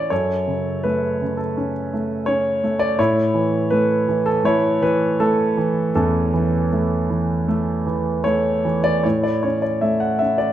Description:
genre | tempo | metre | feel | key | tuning
classical, lyrical solo piano | 75-85 BPM | 4/4 | rubato | A major | A4 = 440 Hz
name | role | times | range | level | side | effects
warm concert grand piano | solo | 0.0-10.5 s | E2 to F#5 | -17 LUFS | equal | none
room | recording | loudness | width
moderate recital hall reverb, RT60 1.5 s | none | -17 LUFS | side -11 dB against mid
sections
0.0-9.1 A section; 9.1-10.5 B section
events
none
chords
0.1 F#m; 3.0 A

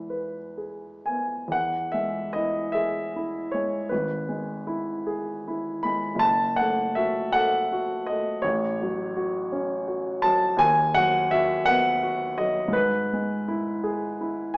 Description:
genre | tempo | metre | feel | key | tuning
classical, romantic nocturne for solo piano | 38-57 BPM (dotted quarters) | 6/8 | rubato | E major, B major from 10.6 s | A4 = 440 Hz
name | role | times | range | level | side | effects
warm grand piano | solo | 0.0-14.6 s | F#1 to B5 | -23 LUFS | equal | none
room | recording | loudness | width
wet large studio reverb, RT60 1.4 s | small speaker sound | -23 LUFS | side -26 dB against mid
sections
0.0-1.5 A section; 1.5-14.6 B section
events
none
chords
0.0 E; 3.9 E/G#; 6.2 F#m; 8.4 F#m/A; 10.6 B/D#; 12.7 E/G#

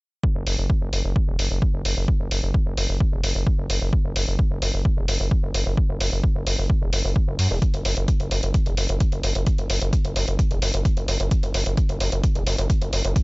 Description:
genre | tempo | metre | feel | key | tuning
driving peak-time techno | 130 BPM | 4/4 | straight | unclear | A4 = 443 Hz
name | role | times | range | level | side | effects
electronic kick drum | drums | 0.2-13.2 s | none | -21 LUFS | equal | overdrive
gritty driven synth bass | bass | 0.4-13.1 s | E1 to F#2 | -23 LUFS | equal | distortion, sidechain pumping
electronic hi-hat | drums | 0.5-13.2 s | none | -28 LUFS | equal | none
room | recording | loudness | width
little or no reverb | dry, gritty hardware recording, nothing above 7.8 kHz | -20 LUFS | side -28 dB against mid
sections
0.2-13.2 A section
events
filter sweep on analog synth bass 0.2-13.2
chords
none

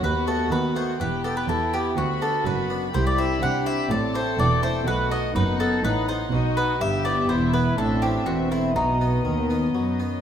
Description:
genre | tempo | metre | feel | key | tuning
classical, baroque-style concerto movement with solo episodes | 124 BPM | 4/4 | straight | unclear | A4 = 439 Hz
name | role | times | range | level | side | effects
mandolin | melody | 0.0-10.2 s | D#4 to F#5 | -26 LUFS | left 1 dB | none
warm chamber violin section | melody | 0.0-10.2 s | D#5 to B5 | -36 LUFS | left 3 dB | none
warm chamber violin section | second line | 0.0-10.2 s | B3 to A4 | -30 LUFS | left 1 dB | none
dark chamber viola section | accompaniment | 0.0-10.2 s | A3 to E4 | -29 LUFS | left 3 dB | none
harpsichord | accompaniment | 0.0-10.2 s | C2 to G4 | -31 LUFS | equal | none
dark chamber cello section | bass | 0.0-10.2 s | C2 to F#3 | -29 LUFS | right 2 dB | none
rich chamber double bass section | bass | 0.0-10.2 s | E1 to F#2 | -28 LUFS | right 3 dB | none
room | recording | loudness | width
moderate recital hall reverb, RT60 1.7 s | none | -21 LUFS | side -9 dB against mid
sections
0.0-10.2 A section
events
none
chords
0.0 B7/D#; 1.0 Em; 2.0 Bm/D; 2.9 C; 3.9 Am; 4.9 B; 5.8 B7/A; 6.8 Em/G; 7.8 Am; 8.8 B

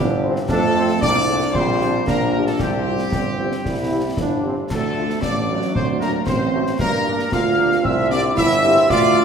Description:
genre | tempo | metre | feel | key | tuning
military-style march for wind band | 114 BPM | 2/4 | straight | unclear | A4 = 440 Hz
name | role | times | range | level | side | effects
bright trumpet section | melody | 0.0-9.2 s | G4 to F5 | -22 LUFS | left 1 dB | none
mellow euphonium | second line | 0.0-9.2 s | G3 to F4 | -24 LUFS | right 4 dB | none
wooden piccolo | second line | 0.0-9.2 s | G5 to F6 | -25 LUFS | left 3 dB | none
clear trombone section | sustained chords | 0.0-9.2 s | Gb3 to F4 | -25 LUFS | right 1 dB | none
warm tuba | bass | 0.0-9.2 s | G1 to G2 | -22 LUFS | right 2 dB | none
dark French horn section | accompaniment | 0.2-9.2 s | A3 to C5 | -29 LUFS | left 4 dB | none
concert snare drum, clash cymbals and concert bass drum | drums | 0.4-9.1 s | none | -27 LUFS | left 1 dB | none
room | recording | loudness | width
wet scoring stage reverb, RT60 1.5 s | heard from further back in the room | -16 LUFS | side -7 dB against mid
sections
0.0-9.2 A section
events
none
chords
0.5 F; 1.5 Gm/Bb; 2.6 Csus4; 3.6 C; 4.7 Dm; 5.7 D7; 6.8 Gm; 7.8 C7

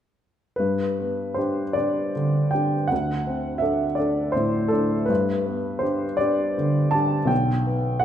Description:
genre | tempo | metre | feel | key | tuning
classical, romantic nocturne for solo piano | 54 BPM (dotted quarters) | 6/8 | uneven beats, rubato | G major | A4 = 441 Hz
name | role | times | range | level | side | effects
warm upright piano | solo | 0.6-8.0 s | B1 to A5 | -21 LUFS | equal | none
room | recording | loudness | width
wet recital hall reverb, RT60 1.5 s | minimal, uncompressed stereo recording | -21 LUFS | side -10 dB against mid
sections
0.6-8.0 A section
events
none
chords
0.6 G; 2.9 D7; 5.1 G; 7.3 G/B

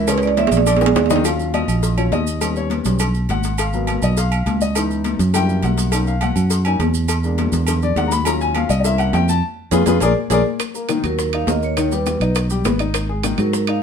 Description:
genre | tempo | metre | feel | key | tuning
Afro-Cuban jazz | 205 BPM | 4/4 | straight | Eb minor | A4 = 440 Hz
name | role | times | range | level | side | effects
vibraphone with medium mallets | melody | 0.0-1.1, 11.1-13.8 s | Bb4 to F5 | -22 LUFS | right 7 dB | none
warm grand piano | accompaniment | 0.0-13.8 s | C#3 to D6 | -22 LUFS | left 4 dB | none
fingered electric bass | bass | 0.0-13.8 s | Ab1 to Ab2 | -19 LUFS | right 1 dB | none
congas | percussion | 0.1-13.8 s | none | -27 LUFS | left 6 dB | none
cowbell and bongos | percussion | 0.1-13.8 s | none | -28 LUFS | left 6 dB | none
maracas | percussion | 0.1-13.7 s | none | -30 LUFS | right 6 dB | none
timbales and agogo bells | percussion | 0.1-13.8 s | none | -25 LUFS | right 7 dB | none
room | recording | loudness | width
moderate studio reverb, RT60 0.7 s | band playing live in one room | -16 LUFS | side -7 dB against mid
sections
0.0-1.2 A section; 1.2-10.6 A section; 10.6-13.8 B section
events
vibraphone solo 0.0-1.2; drum fill 0.1-1.2, 9.7-10.6; grand piano solo 1.2-10.6; band accent 9.4-10.6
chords
0.1 A#dim; 0.7 A#7; 1.2 Ebm7; 2.4 Eb7alt; 3.6 Abm7; 4.8 Dbm7; 5.3 Gb7b9; 5.9 Bmaj9; 7.1 E7#11; 8.3 Ebm7; 8.8 C7b9; 9.4 Fdim; 10.0 Bb7; 10.6 Ebm; 11.8 Ebaug; 12.9 Ab5

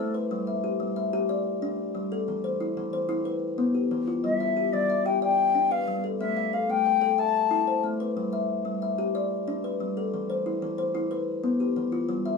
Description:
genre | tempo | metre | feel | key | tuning
southern african traditional | 122 BPM (dotted quarters) | 12/8 | straight | G mixolydian | A4 = 439 Hz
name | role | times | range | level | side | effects
bright baroque flute | melody | 0.0-0.1, 4.2-7.8 s | A4 to A5 | -24 LUFS | left 6 dB | none
kalimba | arpeggios | 0.0-12.4 s | E3 to F5 | -26 LUFS | left 2 dB | none
room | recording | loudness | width
moderate small room reverb, RT60 0.5 s | small room ambience | -24 LUFS | side -4 dB against mid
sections
0.0-12.1 A section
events
none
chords
0.3 G5; 2.3 Em; 4.2 G; 6.2 Am; 8.2 G; 10.1 Em

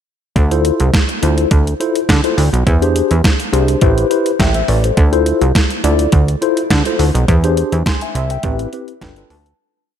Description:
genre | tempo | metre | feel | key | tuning
early-eighties boogie funk | 104 BPM | 4/4 | straight | D dorian | A4 = 439 Hz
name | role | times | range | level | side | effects
mellow tine electric piano | accompaniment | 0.4-9.6 s | C4 to B#5 | -17 LUFS | left 3 dB | medium stereo tremolo, slapback echo
plucky analog bass | bass | 0.4-9.5 s | G1 to D3 | -14 LUFS | right 1 dB | none
clean 12-bit digital drum machine | drums | 0.4-9.6 s | hi-hat, kick drum, snare drum | -15 LUFS | right 1 dB | overdrive
room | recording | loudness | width
light reverb, digital ambience | none | -12 LUFS | side -9 dB against mid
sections
0.4-9.6 verse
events
fade-out 7.3-9.6; tine electric piano fill 8.7-9.6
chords
0.4 Dm9; 2.7 E7alt; 3.8 Am9; 5.0 Dm9; 7.3 E7alt; 8.4 Am9; 9.0 G7

